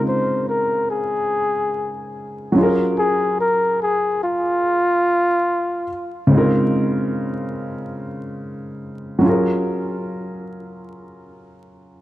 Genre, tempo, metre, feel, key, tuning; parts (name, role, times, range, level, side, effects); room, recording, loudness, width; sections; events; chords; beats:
lo-fi hip hop; 72 BPM; 4/4; swing 65% on 16ths; A4 = 440 Hz
breathy flugelhorn; melody; 0.0-6.3 s; F4 to C5; -19 LUFS; left 1 dB
dark upright piano; accompaniment; 0.0-12.0 s; Db3 to Bb4; -20 LUFS; equal
light reverb, small room ambience; vinyl crackle; -17 LUFS; side -15 dB against mid
0.0-12.0 A section
0.0 Dbmaj13; 2.6 Gbmaj9; 6.3 Dbmaj13; 9.2 Gbmaj9
0.48 1.31 2.14 | 2.98 3.81 4.64 5.48 | 6.31 7.14 7.98 8.81 | 9.64 10.48 11.31